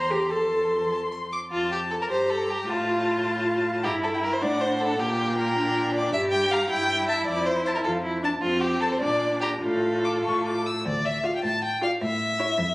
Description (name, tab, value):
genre	quick classical-period movement for string quartet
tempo	103 BPM (dotted quarters)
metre	6/8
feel	rubato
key	F major, D minor from 6.1 s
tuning	A4 = 441 Hz
part	rich violin	melody	0.0-12.7 s	D5 to E6	-29 LUFS	left 2 dB	none
part	rich violin	second line	0.0-12.5 s	F4 to D6	-27 LUFS	equal	none
part	rich viola	accompaniment	0.0-12.5 s	Bb3 to C5	-26 LUFS	equal	none
part	rich cello	bass	0.0-12.7 s	D2 to Bb2	-31 LUFS	equal	none
room	moderate recital hall reverb, RT60 1.5 s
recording	recorded on a phone in the room, club reverb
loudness	-22 LUFS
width	side -20 dB against mid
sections	0.0-1.5 A section; 1.5-10.8 A section; 10.8-12.7 B section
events	none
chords	0.3 F; 2.1 Gmadd9; 2.7 F/A; 3.8 Gm; 4.4 D/A; 5.0 Gm/Bb; 6.1 N.C.; 7.3 F; 9.0 Bb; 9.6 Dm/A (rootless); 10.8 Dm; 12.0 A